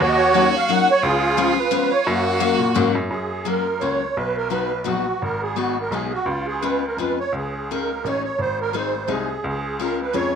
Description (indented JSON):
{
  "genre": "musette waltz",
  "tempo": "172 BPM",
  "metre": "3/4",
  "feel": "swing 55% on 8ths",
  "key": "F# major",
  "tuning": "A4 = 440 Hz",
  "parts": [
    { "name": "musette accordion", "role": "melody", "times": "0.0-10.3 s", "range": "A#3 to F#5", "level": "-21 LUFS", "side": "right 2 dB", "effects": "none" },
    { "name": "clear violin", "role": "second line", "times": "0.0-2.9 s", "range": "E#4 to F#4", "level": "-25 LUFS", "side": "right 7 dB", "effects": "none" },
    { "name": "clear baby grand piano", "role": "bass", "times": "0.0-10.4 s", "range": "G#1 to A#2", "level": "-26 LUFS", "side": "equal", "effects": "none" },
    { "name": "picked steel-string acoustic guitar", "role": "accompaniment", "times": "0.3-10.3 s", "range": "E#3 to G#4", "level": "-25 LUFS", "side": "left 11 dB", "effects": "none" }
  ],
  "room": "moderate echo chamber reverb, RT60 1.6 s, small room ambience",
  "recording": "1960s-style stereo with parts hard left and right",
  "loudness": "-19 LUFS",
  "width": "side -7 dB against mid",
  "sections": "0.0-3.1 A section; 3.1-10.4 B section",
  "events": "none",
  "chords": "0.0 D#m7; 1.0 C#7; 2.1 F#add9; 4.2 B; 5.2 G#m7; 6.3 C#7; 7.3 C#sus2; 8.4 G#; 9.4 C#"
}